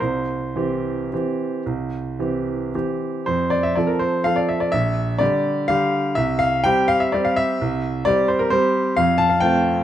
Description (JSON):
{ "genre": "classical, piano waltz", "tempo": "106-137 BPM", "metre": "3/4", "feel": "rubato", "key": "F major", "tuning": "A4 = 438 Hz", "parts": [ { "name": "bright grand piano", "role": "solo", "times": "0.0-9.8 s", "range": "Bb1 to A5", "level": "-18 LUFS", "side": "equal", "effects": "none" } ], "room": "moderate recital hall reverb, RT60 1.4 s", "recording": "close, detailed microphones", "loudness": "-18 LUFS", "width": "side -11 dB against mid", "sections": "0.0-3.3 A section; 3.3-9.8 B section", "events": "none", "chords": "0.0 C; 3.3 F; 4.7 Gm/Bb; 6.2 C; 9.0 F", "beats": "| 0.01 0.56 1.12 | 1.66 2.18 2.74 | 3.27 3.76 4.26 | 4.74 5.21 5.69 | 6.17 6.65 7.14 | 7.61 8.06 8.52 | 8.98 9.42" }